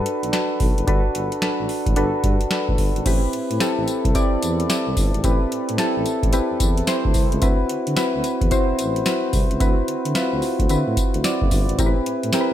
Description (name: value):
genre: R&B, new jack swing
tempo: 110 BPM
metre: 4/4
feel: swing 63% on 16ths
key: A dorian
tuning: A4 = 442 Hz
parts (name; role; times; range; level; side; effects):
- soft electric-piano-like synth keys; accompaniment; 0.0-12.5 s; C4 to D5; -22 LUFS; equal; chorus
- mellow tuba; bass; 0.0-12.5 s; F#1 to D3; -26 LUFS; equal; none
- booming analog drum machine; drums; 0.1-12.5 s; crash cymbal, hi-hat, kick drum, snare drum, tambourine; -21 LUFS; equal; none
room: light reverb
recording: none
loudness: -18 LUFS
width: side -11 dB against mid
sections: 0.0-3.1 A section; 3.1-12.5 B section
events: none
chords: 0.0 Gmaj7; 3.1 Am7; 7.4 D13; 11.8 Am7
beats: 0.33 | 0.88 1.42 1.97 2.51 | 3.06 3.60 4.15 4.69 | 5.24 5.79 6.33 6.88 | 7.42 7.97 8.51 9.06 | 9.60 10.15 10.69 11.24 | 11.79 12.33